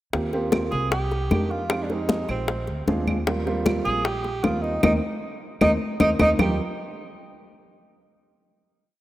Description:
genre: Afro-Cuban jazz.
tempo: 153 BPM.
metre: 4/4.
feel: straight.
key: Eb major.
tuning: A4 = 440 Hz.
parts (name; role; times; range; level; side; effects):
dark upright piano; accompaniment; 0.1-6.6 s; G3 to G4; -29 LUFS; right 2 dB; none.
upright bass; bass; 0.1-6.6 s; Bb1 to F2; -28 LUFS; equal; none.
bongos; percussion; 0.1-6.5 s; none; -28 LUFS; left 4 dB; none.
congas; percussion; 0.1-6.5 s; none; -27 LUFS; left 1 dB; none.
claves; percussion; 0.5-6.5 s; none; -34 LUFS; right 4 dB; none.
clear tenor saxophone; melody; 0.7-6.6 s; C4 to Ab4; -26 LUFS; right 1 dB; none.
room: moderate lush hall reverb, RT60 2.5 s.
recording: rough home demo mix.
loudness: -21 LUFS.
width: side -15 dB against mid.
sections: 0.1-6.4 A section; 6.4-8.0 final chord.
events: band accent 4.8-6.4; drum fill 5.8-6.4.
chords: 0.1 Eb69; 0.9 Cm7; 1.7 Fm9; 2.5 Bb9; 3.3 Eb69.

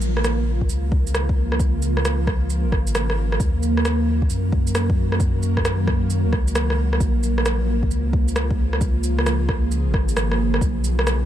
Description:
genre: future garage.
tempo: 133 BPM.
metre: 4/4.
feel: swing 65% on 16ths.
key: Bb phrygian.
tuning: A4 = 440 Hz.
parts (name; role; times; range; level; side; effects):
ethereal airy pad; sustained chords; 0.0-11.3 s; Db3 to Cb5; -26 LUFS; right 2 dB; ensemble chorus, built-in reverb, sidechain pumping.
warm sub bass; bass; 0.0-11.3 s; Ab1 to Gb2; -22 LUFS; equal; sidechain pumping.
electronic shaker and rim click; drums; 0.0-11.2 s; none; -26 LUFS; right 2 dB; overdrive.
electronic kick drum; drums; 0.6-10.7 s; none; -22 LUFS; equal; overdrive.
room: light reverb.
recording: none.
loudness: -18 LUFS.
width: side -11 dB against mid.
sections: 0.0-11.3 A section.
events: none.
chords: 0.0 Bbm; 3.4 Ebm; 7.0 Bbm; 10.6 Abm7/Cb.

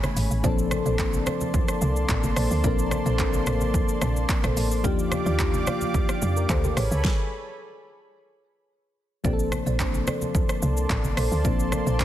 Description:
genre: amapiano.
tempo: 109 BPM.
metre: 4/4.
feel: straight.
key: Bb major.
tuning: A4 = 438 Hz.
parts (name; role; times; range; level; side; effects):
mellow FM electric piano; accompaniment; 0.0-12.0 s; E3 to C5; -29 LUFS; left 6 dB; chorus.
warm analog pad; sustained chords; 0.0-12.0 s; A3 to D6; -32 LUFS; right 2 dB; chorus.
deep house drum kit; drums; 0.0-12.0 s; handclaps, hi-hat, kick drum, rim click, shaker, snare drum; -26 LUFS; equal; overdrive.
congas; percussion; 0.0-11.9 s; none; -33 LUFS; right 2 dB; none.
woody log drum bass; bass; 0.2-12.0 s; G#1 to F2; -26 LUFS; equal; none.
marimba with medium mallets; stabs; 0.4-12.0 s; F4 to D5; -32 LUFS; right 3 dB; ping-pong delay.
room: light reverb.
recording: dense, heavily limited modern master.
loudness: -22 LUFS.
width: side -12 dB against mid.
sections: 0.0-9.2 A section; 9.2-12.0 A section.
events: drop 0.0-9.2, 9.2-12.0; stop 7.0-9.2.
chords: 0.4 Bbmaj9; 4.8 Ebmaj9; 6.8 Amaj9; 9.2 Bbmaj9.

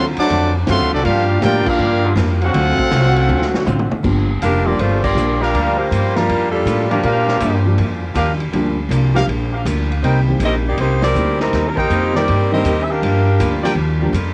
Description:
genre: jazz, big band swing.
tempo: 160 BPM.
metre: 4/4.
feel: swing 66% on 8ths.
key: G minor.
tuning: A4 = 440 Hz.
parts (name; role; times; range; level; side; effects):
bright trumpet section; melody; 0.0-3.6 s; C4 to D6; -22 LUFS; equal; cassette tape, analog delay.
warm trombone section; second line; 0.0-3.6 s; F#3 to G4; -22 LUFS; equal; cassette tape, analog delay.
archtop guitar, miked and amplified; accompaniment; 0.0-14.3 s; G2 to E#4; -27 LUFS; equal; cassette tape.
upright bass; bass; 0.0-14.3 s; F1 to Bb2; -20 LUFS; equal; none.
vintage drum kit; drums; 0.2-14.3 s; crash cymbal, hi-hat, kick drum, ride cymbal, snare drum, toms; -28 LUFS; equal; cassette tape.
warm trombone section; sustained chords; 2.0-3.6 s; D3 to F#4; -27 LUFS; equal; cassette tape.
dark grand piano; accompaniment; 4.0-14.1 s; Eb3 to Bb4; -24 LUFS; equal; cassette tape.
clear saxophone section; melody; 4.4-7.7, 10.5-13.6 s; F3 to F5; -21 LUFS; equal; cassette tape, analog delay.
clear trumpet section; stabs; 5.4-13.7 s; D4 to G5; -26 LUFS; equal; cassette tape, analog delay.
room: little or no reverb.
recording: home recording on cassette.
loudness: -16 LUFS.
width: mono.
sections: 0.0-4.0 A section; 4.0-14.3 B section.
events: band accent 1.6, 5.0, 11.0; drum fill 3.3-4.0.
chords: 0.0 D7#9; 1.0 Gm7; 2.5 D7#9; 4.0 Gm7; 10.0 Cm7; 13.0 Gm7.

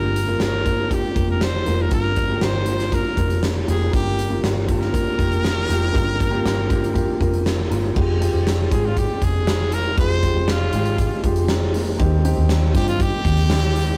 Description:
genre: piano-driven pop.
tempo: 119 BPM.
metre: 4/4.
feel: straight.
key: unclear.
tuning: A4 = 440 Hz.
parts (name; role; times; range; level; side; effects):
brilliant trumpet; melody; 0.0-14.0 s; F4 to C5; -28 LUFS; equal; none.
warm upright piano; accompaniment; 0.0-14.0 s; G2 to Bb4; -27 LUFS; equal; none.
vintage muted fingered electric bass; bass; 0.0-14.0 s; F1 to G2; -24 LUFS; equal; none.
huge arena drum kit; drums; 0.2-13.9 s; crash cymbal, hi-hat, kick drum, snare drum; -25 LUFS; equal; none.
room: moderate small room reverb, RT60 0.6 s.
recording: rough rehearsal-room recording, warm saturation.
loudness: -20 LUFS.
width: mono.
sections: 0.0-8.0 A section; 8.0-14.0 B section.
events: none.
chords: 0.0 Gm7; 8.0 Fmadd9; 12.0 Cm/Eb.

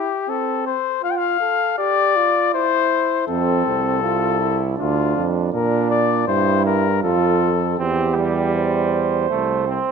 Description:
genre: classical, imitative canzona for brass ensemble.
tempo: 80 BPM.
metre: 3/4.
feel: straight.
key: F major.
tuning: A4 = 440 Hz.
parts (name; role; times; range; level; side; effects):
mellow cornet; melody; 0.0-7.8 s; F4 to G5; -20 LUFS; left 10 dB; none.
mellow flugelhorn; second line; 0.0-9.9 s; C4 to C5; -23 LUFS; right 7 dB; none.
mellow euphonium; bass; 3.3-9.8 s; C2 to Bb2; -21 LUFS; right 4 dB; none.
brilliant trombone; accompaniment; 7.8-9.9 s; G3 to C4; -22 LUFS; right 2 dB; none.
room: light reverb.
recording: none.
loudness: -17 LUFS.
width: side -6 dB against mid.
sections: 0.0-9.9 A section.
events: none.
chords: 0.3 Am/C; 1.0 F; 2.5 C/E; 3.3 F; 4.8 Dm; 5.5 Bb; 7.0 F; 7.8 C/E; 9.3 Am/C.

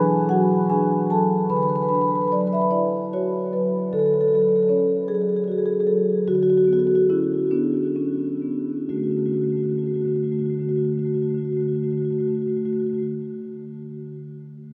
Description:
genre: classical, contemporary piece for solo marimba.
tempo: 41-52 BPM (dotted quarters).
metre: 6/8.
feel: rubato.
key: D lydian.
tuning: A4 = 441 Hz.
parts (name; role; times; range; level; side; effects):
marimba with soft mallets; solo; 0.0-13.1 s; D3 to B5; -22 LUFS; equal; none.
room: wet huge ambient reverb, RT60 8.3 s.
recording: in a vast, echoing space.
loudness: -22 LUFS.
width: mono.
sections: 0.0-3.9 A section; 3.9-8.9 B section; 8.9-11.6 C section.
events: slowing down 2.7-8.9.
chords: 0.0 E9; 1.5 D69; 3.9 Dmaj7; 6.3 Bmadd9/D; 8.9 D.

